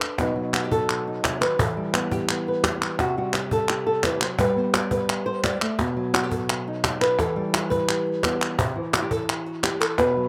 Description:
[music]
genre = flamenco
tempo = 171 BPM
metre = 4/4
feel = straight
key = B phrygian dominant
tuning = A4 = 440 Hz
[part]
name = flamenco guitar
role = melody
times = 0.0-10.3 s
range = B2 to D5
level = -26 LUFS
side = equal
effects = none
[part]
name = cajon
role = percussion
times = 0.0-10.2 s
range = none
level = -31 LUFS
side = equal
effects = none
[part]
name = palmas hand claps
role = percussion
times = 0.0-10.2 s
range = none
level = -30 LUFS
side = equal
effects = none
[sound]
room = light reverb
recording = recorded outdoors, with no room sound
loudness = -24 LUFS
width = mono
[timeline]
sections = 0.2-10.3 A section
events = none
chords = 0.2 B; 1.6 Em; 3.0 C5; 4.4 G; 5.8 B; 7.2 Em; 8.6 C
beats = | 0.19 0.54 0.89 1.24 | 1.59 1.94 2.29 2.64 | 2.99 3.34 3.69 4.04 | 4.39 4.74 5.09 5.44 | 5.79 6.14 6.49 6.84 | 7.19 7.54 7.89 8.24 | 8.59 8.94 9.29 9.64 | 9.99

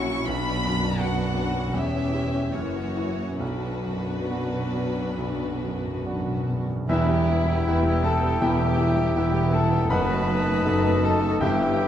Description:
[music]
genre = classical, romantic movement for piano and orchestra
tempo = 67-85 BPM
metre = 4/4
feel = rubato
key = B minor, E minor from 6.9 s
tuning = A4 = 440 Hz
[part]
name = clear grand piano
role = melody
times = 0.0-11.9 s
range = E1 to B5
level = -26 LUFS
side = equal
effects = none
[part]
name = rich chamber violin section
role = melody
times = 0.0-11.9 s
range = E4 to C#6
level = -33 LUFS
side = left 2 dB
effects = none
[part]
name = warm symphonic violin section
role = second line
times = 0.0-11.9 s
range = A3 to G4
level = -34 LUFS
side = left 2 dB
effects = none
[part]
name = warm studio viola section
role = accompaniment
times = 0.0-11.9 s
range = E3 to C#4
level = -33 LUFS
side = equal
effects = none
[part]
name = mellow French horn section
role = sustained chords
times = 0.0-11.9 s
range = F#3 to E4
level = -31 LUFS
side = left 4 dB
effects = none
[part]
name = warm chamber cello section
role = bass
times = 0.0-11.9 s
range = E2 to B2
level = -32 LUFS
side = right 4 dB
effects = none
[part]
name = warm studio double bass section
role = bass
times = 0.0-11.9 s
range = E1 to B1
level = -31 LUFS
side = right 3 dB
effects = none
[part]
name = timpani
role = percussion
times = 0.3-11.0 s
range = F#2 to B2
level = -34 LUFS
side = left 1 dB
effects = none
[part]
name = bright clarinet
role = second line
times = 6.9-11.9 s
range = E4 to B4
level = -33 LUFS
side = left 1 dB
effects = none
[part]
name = hollow concert flute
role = second line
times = 6.9-11.9 s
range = G5 to A5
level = -34 LUFS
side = left 2 dB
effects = none
[part]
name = mellow oboe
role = second line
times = 6.9-11.9 s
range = D#5 to E5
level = -33 LUFS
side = right 1 dB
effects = none
[sound]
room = moderate scoring stage reverb, RT60 1.9 s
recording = close, detailed microphones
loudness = -22 LUFS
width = side -10 dB against mid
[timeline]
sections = 0.0-6.9 A section; 6.9-11.9 B section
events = timpani fill 3.4-6.9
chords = 0.3 Bm; 1.8 C#dim/E; 2.6 F#7; 3.4 Bm; 6.9 Em; 9.9 B7/F#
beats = | 0.29 1.01 1.75 2.55 | 3.41 4.31 5.20 6.06 | 6.89 7.67 8.41 9.15 | 9.90 10.65 11.41

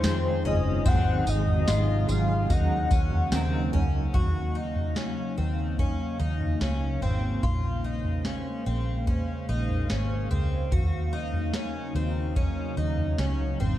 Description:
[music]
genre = dream pop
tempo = 73 BPM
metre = 4/4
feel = straight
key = Eb dorian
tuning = A4 = 436 Hz
[part]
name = warm velvety synth lead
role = melody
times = 0.0-3.7 s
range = C5 to Gb5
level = -32 LUFS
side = left 2 dB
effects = chorus, tape echo
[part]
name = mellow electric guitar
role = accompaniment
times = 0.0-4.7 s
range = Ab2 to Bb4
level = -34 LUFS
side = right 2 dB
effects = tremolo, ensemble chorus
[part]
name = warbly tape-like pad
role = sustained chords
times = 0.0-13.8 s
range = C3 to F5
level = -33 LUFS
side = right 1 dB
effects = chorus, built-in reverb, phaser
[part]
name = picked twelve-string acoustic guitar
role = arpeggios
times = 0.0-13.8 s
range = C4 to Gb4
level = -34 LUFS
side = left 3 dB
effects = wide subtle chorus, tape echo
[part]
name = vintage muted fingered electric bass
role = bass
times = 0.0-13.8 s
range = Gb1 to F2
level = -28 LUFS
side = equal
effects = none
[part]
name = soft vintage rhythm box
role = drums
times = 0.0-13.8 s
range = kick drum, snare drum, tambourine, toms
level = -28 LUFS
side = equal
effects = none
[sound]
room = light reverb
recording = dark, warm production, lossy compression artefacts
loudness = -24 LUFS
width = side -13 dB against mid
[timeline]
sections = 0.0-4.1 A section; 4.1-13.8 B section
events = none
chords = 0.0 Fm7; 0.9 Ab7; 2.5 Ebm7; 4.1 Ebm9; 7.4 Bbm9; 10.7 Ebm9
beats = 0.04 | 0.86 1.68 2.50 3.32 | 4.14 4.97 5.79 6.61 | 7.43 8.25 9.08 9.90 | 10.72 11.54 12.36 13.19

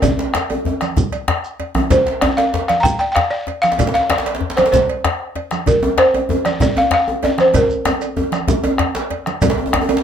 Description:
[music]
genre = west african traditional, West African drum ensemble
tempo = 128 BPM (dotted quarters)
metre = 12/8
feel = straight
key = Bb major pentatonic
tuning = A4 = 439 Hz
[part]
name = balafon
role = melody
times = 0.0-9.1 s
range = Bb4 to Bb5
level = -16 LUFS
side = equal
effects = plate reverb
[part]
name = bombo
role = percussion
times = 0.0-10.0 s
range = none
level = -21 LUFS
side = left 2 dB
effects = none
[part]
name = congas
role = percussion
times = 0.0-9.8 s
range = none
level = -23 LUFS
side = right 8 dB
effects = none
[part]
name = cowbell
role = percussion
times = 0.0-10.0 s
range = none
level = -27 LUFS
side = right 6 dB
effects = none
[part]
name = djembe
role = percussion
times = 0.0-9.9 s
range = none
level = -24 LUFS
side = left 6 dB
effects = none
[part]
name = djembe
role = percussion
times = 0.0-10.0 s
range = none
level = -20 LUFS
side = right 1 dB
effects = none
[part]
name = shekere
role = percussion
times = 0.0-9.6 s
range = none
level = -29 LUFS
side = right 2 dB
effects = none
[sound]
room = moderate studio reverb, RT60 0.6 s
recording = none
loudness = -14 LUFS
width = side -8 dB against mid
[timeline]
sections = 0.0-9.4 A section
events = drum fill 7.5-9.4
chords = none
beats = | 0.03 0.50 0.97 1.44 | 1.91 2.38 2.85 3.32 | 3.79 4.26 4.73 5.20 | 5.67 6.14 6.61 7.08 | 7.55 8.02 8.49 8.95 | 9.42 9.89

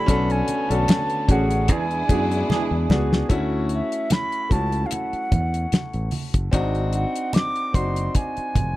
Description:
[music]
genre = lush 1970s-style soul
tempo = 74 BPM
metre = 4/4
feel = swing 54% on 16ths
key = unclear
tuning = A4 = 440 Hz
[part]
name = concert flute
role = melody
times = 0.0-8.8 s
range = E5 to D6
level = -27 LUFS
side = right 1 dB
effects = tape echo
[part]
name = clear grand piano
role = accompaniment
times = 0.0-8.8 s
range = A3 to A4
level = -26 LUFS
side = left 2 dB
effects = none
[part]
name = clear studio string section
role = sustained chords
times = 0.0-3.3 s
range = D3 to E4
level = -31 LUFS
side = left 1 dB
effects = none
[part]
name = warm horn section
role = stabs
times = 0.0-3.3 s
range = D3 to G#4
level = -28 LUFS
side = right 10 dB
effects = none
[part]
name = fingered electric bass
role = bass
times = 0.1-8.8 s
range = F1 to F#2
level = -24 LUFS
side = equal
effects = none
[part]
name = damped 70s drum kit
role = drums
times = 0.1-8.8 s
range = hi-hat, kick drum, snare drum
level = -20 LUFS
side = equal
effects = none
[part]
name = congas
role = percussion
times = 0.1-8.8 s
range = none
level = -29 LUFS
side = right 2 dB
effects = none
[sound]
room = little or no reverb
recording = dry, close 1970s-style studio recording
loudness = -20 LUFS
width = side -16 dB against mid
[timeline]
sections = 0.0-3.3 A section; 3.3-8.8 B section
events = drum fill 2.5-3.3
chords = 0.1 Bm9; 1.7 E7; 3.3 Dmaj9; 6.5 G#7#11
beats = | 0.07 0.88 1.69 2.49 | 3.30 4.11 4.91 5.72 | 6.53 7.34 8.15

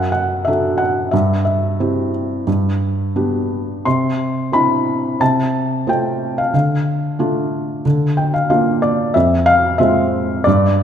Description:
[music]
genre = classical, lyrical solo piano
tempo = 90 BPM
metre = 4/4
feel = rubato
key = C major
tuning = A4 = 440 Hz
[part]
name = felt-muted upright piano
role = solo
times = 0.0-10.8 s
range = F2 to C6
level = -14 LUFS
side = equal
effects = none
[sound]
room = moderate scoring stage reverb, RT60 2.0 s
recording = minimal, uncompressed stereo recording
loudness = -15 LUFS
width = side -8 dB against mid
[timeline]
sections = 0.0-10.8 A section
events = felt piano fill 7.9-9.2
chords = 0.0 D/F#; 1.1 C/G; 2.5 G; 3.9 Cadd9; 5.2 F/C; 6.5 Dm; 7.9 Bb/D; 9.2 Fm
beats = 0.48 | 1.14 1.80 2.47 3.17 | 3.86 4.54 5.21 5.88 | 6.54 7.20 7.85 8.50 | 9.15 9.81 10.47

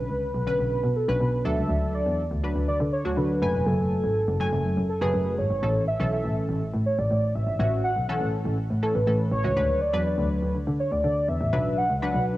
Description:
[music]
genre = dance-pop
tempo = 122 BPM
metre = 4/4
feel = straight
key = A major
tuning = A4 = 436 Hz
[part]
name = warm velvety synth lead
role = melody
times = 0.0-12.3 s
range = A4 to F#5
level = -27 LUFS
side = equal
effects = chorus, analog delay
[part]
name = funky polysynth comp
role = accompaniment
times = 0.0-12.4 s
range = D3 to G#5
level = -29 LUFS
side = equal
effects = chorus, cassette tape
[part]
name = rich double bass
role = bass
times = 0.1-12.2 s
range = E1 to D3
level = -26 LUFS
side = equal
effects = none
[sound]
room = light reverb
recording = home recording on cassette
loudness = -22 LUFS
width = side -16 dB against mid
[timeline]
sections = 0.0-5.6 A section; 5.6-12.4 B section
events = build-up 5.6-12.4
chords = 0.0 Bmadd9; 1.4 D; 3.4 F#madd9; 5.6 A; 9.6 D6; 11.5 Bm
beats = 0.22 0.71 1.21 | 1.70 2.19 2.68 3.17 | 3.66 4.16 4.65 5.14 | 5.63 6.12 6.61 7.11 | 7.60 8.09 8.58 9.07 | 9.56 10.06 10.55 11.04 | 11.53 12.02

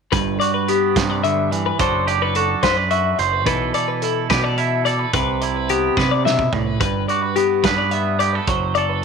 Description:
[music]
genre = math rock and midwest emo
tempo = 72 BPM (dotted quarters)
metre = 6/8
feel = straight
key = G major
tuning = A4 = 440 Hz
[part]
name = twangy electric guitar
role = accompaniment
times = 0.1-9.0 s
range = G2 to C5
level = -21 LUFS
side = right 10 dB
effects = spring reverb
[part]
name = twelve-string electric guitar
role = arpeggios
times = 0.1-9.0 s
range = G4 to E5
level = -21 LUFS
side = left 11 dB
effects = wide subtle chorus
[part]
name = growling picked electric bass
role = bass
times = 0.1-9.0 s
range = F#1 to C3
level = -24 LUFS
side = left 1 dB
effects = overdrive
[part]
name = loose indie drum kit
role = drums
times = 0.1-8.9 s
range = hi-hat, kick drum, snare drum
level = -24 LUFS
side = right 4 dB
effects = none
[sound]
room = moderate plate reverb, RT60 1.7 s, small room ambience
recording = 1960s-style stereo with parts hard left and right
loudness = -16 LUFS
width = side -5 dB against mid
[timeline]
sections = 0.1-9.0 A section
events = drum fill 6.0-6.8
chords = 0.1 Gmaj7; 1.8 D7/F#; 3.5 B7sus4; 5.1 Cmaj7; 6.8 Gmaj7; 8.5 D7/F#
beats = | 0.12 0.96 | 1.79 2.63 | 3.46 4.30 | 5.14 5.97 | 6.81 7.64 | 8.48

